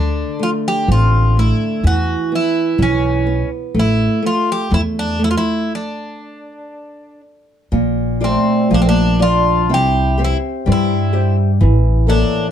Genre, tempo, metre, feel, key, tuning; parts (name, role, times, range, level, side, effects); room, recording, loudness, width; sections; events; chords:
fado-style ballad; 62 BPM; 2/4; rubato; A4 = 440 Hz
Greek bouzouki; melody; 0.0-12.5 s; C4 to G4; -20 LUFS; left 1 dB
nylon-string guitar; accompaniment; 0.0-12.5 s; Bb2 to E5; -19 LUFS; right 1 dB
upright bass; bass; 0.0-12.2 s; A1 to G2; -16 LUFS; equal
picked twelve-string acoustic guitar; second line; 8.2-12.5 s; A3 to E4; -20 LUFS; equal
light reverb; dark, warm production; -13 LUFS; side -9 dB against mid
0.0-7.7 A section; 7.7-12.5 B section
stop 5.7-7.7
0.0 D5; 1.8 E5; 3.8 A5; 5.7 N.C.; 7.7 Bb; 9.7 C; 11.6 A